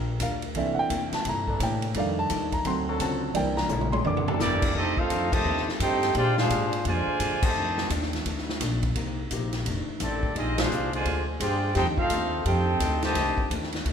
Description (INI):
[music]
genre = jazz, big band swing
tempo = 171 BPM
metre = 4/4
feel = swing 64% on 8ths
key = F major from 4.8 s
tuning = A4 = 442 Hz
[part]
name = archtop guitar, miked and amplified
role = accompaniment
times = 0.0-13.9 s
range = F2 to D5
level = -35 LUFS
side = left 4 dB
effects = none
[part]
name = warm trombone section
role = sustained chords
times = 0.0-4.7 s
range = E3 to A4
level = -36 LUFS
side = left 2 dB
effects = none
[part]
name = upright bass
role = bass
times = 0.0-13.9 s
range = F1 to Bb2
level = -30 LUFS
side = equal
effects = none
[part]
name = clear concert grand piano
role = accompaniment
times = 0.2-4.7 s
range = Eb3 to D6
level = -28 LUFS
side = right 2 dB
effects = none
[part]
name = swinging big-band drum kit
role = drums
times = 0.2-13.9 s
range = crash cymbal, hi-hat, kick drum, ride cymbal, snare drum, toms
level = -31 LUFS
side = equal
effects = none
[part]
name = warm trumpet section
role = melody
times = 4.4-7.9, 10.0-13.5 s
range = Bb3 to A5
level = -27 LUFS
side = equal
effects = none
[part]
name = dark trombone section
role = second line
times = 4.4-13.5 s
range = C3 to Ab4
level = -31 LUFS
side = right 1 dB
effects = none
[sound]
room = moderate scoring stage reverb, RT60 1.9 s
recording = minimal, uncompressed stereo recording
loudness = -24 LUFS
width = side -7 dB against mid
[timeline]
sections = 0.0-4.8 A section; 4.8-13.9 B section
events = grand piano solo 0.0-4.8; drum fill 3.7-4.4; band accent 5.3, 7.4, 10.5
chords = 0.0 Gm7; 0.6 C13; 1.9 F13; 2.6 D7; 3.4 C13; 4.8 F13; 6.2 Bb13; 7.6 F13; 9.0 Cm7; 9.7 F13; 10.4 Bb13; 11.8 F13